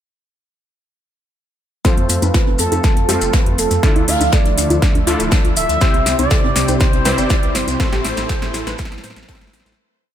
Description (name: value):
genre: progressive house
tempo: 121 BPM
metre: 4/4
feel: straight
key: unclear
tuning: A4 = 440 Hz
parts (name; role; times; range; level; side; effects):
- warm analog pad; sustained chords; 2.5-9.8 s; C3 to E5; -26 LUFS; right 1 dB; chorus, sidechain pumping
- wide unison pluck; arpeggios; 1.8-9.7 s; C4 to C5; -25 LUFS; right 1 dB; sidechain pumping, digital delay
- supersaw stab; stabs; 1.8-9.8 s; A2 to C5; -23 LUFS; left 3 dB; sidechain pumping, low-pass filter, digital delay
- big-room dance drum kit; drums; 1.8-9.8 s; hi-hat, snare drum; -24 LUFS; right 1 dB; none
- electronic kick drum; drums; 1.8-9.4 s; none; -15 LUFS; equal; none
- riser; sound effects; 5.5-9.8 s; none; -35 LUFS; right 2 dB; none
- expressive synth lead; melody; 1.9-9.3 s; A4 to F5; -21 LUFS; right 1 dB; wide subtle chorus, sidechain pumping, digital delay
- jazz brush drum kit; drums; 1.9-9.8 s; hi-hat, snare drum; -30 LUFS; left 3 dB; sidechain pumping on hats, high-pass filter on hats, high-pass filter on snare, high-pass filter on room
- maracas; percussion; 1.9-9.8 s; none; -26 LUFS; left 6 dB; none
- dark detuned saw bass; bass; 2.0-9.7 s; D1 to A2; -23 LUFS; equal; sidechain pumping
- congas; percussion; 2.2-9.8 s; none; -28 LUFS; left 3 dB; sidechain pumping on perc
room: light reverb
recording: none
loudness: -13 LUFS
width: side -10 dB against mid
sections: 1.8-9.8 build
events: build-up 1.8-9.8; drum fill 1.8-9.8; filter sweep on synth pluck 1.8-9.8; filter sweep on supersaw synth 1.8-9.8; filter sweep on analog synth pad 1.8-9.8; fade-out 7.1-9.8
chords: 1.8 F; 3.8 Dmadd9; 5.8 C